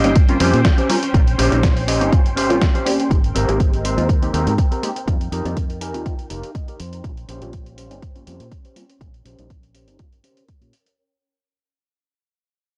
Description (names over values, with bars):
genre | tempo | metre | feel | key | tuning
filtered disco house | 122 BPM | 4/4 | straight | Bb dorian | A4 = 439 Hz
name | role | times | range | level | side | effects
funky polysynth comp | accompaniment | 0.0-10.1 s | G3 to C5 | -25 LUFS | equal | chorus, phaser, sidechain pumping, low-pass filter
phased string machine | sustained chords | 0.0-11.0 s | C4 to G5 | -31 LUFS | equal | ensemble chorus, phaser, sidechain pumping, low-pass filter
mellow electric guitar | riff | 0.0-10.9 s | C4 to Ab5 | -25 LUFS | equal | sidechain pumping, low-pass filter
fingered electric bass | bass | 0.0-10.7 s | F1 to Bb2 | -25 LUFS | equal | tube saturation, sidechain pumping, low-pass filter
dusty soul sampler-style drum kit | drums | 0.0-11.0 s | hi-hat, snare drum | -28 LUFS | equal | sidechain pumping on hats, studio reverb
electronic kick drum | drums | 0.2-10.6 s | none | -19 LUFS | equal | overdrive, studio reverb
room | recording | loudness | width
light reverb | dry, gritty hardware recording, cassette tape | -18 LUFS | mono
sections
0.0-11.0 A section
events
fade-out 0.0-11.0; filter sweep on fingered electric bass 0.0-11.0; filter sweep 0.0-11.0; clean electric guitar fill 5.6-7.0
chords
0.0 Bbm69; 3.1 Abmaj9; 5.1 F9sus4; 7.0 Bbm69